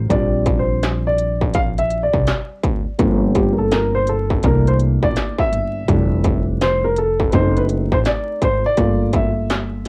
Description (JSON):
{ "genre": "hip hop, jazz-hop", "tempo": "83 BPM", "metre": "4/4", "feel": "swing 62% on 16ths", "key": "unclear", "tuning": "A4 = 439 Hz", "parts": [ { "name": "dark upright piano", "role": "accompaniment", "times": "0.0-9.9 s", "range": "E3 to F5", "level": "-22 LUFS", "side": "equal", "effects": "cassette tape" }, { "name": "upright bass", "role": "bass", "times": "0.0-9.9 s", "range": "F1 to D2", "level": "-22 LUFS", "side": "equal", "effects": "none" }, { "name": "industrial drum kit", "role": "drums", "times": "0.1-9.9 s", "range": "hi-hat, kick drum, snare drum", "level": "-23 LUFS", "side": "equal", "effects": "distortion" } ], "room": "moderate small room reverb, RT60 0.5 s", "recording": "home recording on cassette, vinyl crackle", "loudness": "-18 LUFS", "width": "mono", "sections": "0.0-9.9 A section", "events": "upright piano solo 0.0-9.9", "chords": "0.1 Bb6; 3.0 Gm11; 4.4 C13; 5.9 Fmaj13; 7.3 F#dim7; 8.8 Gm7" }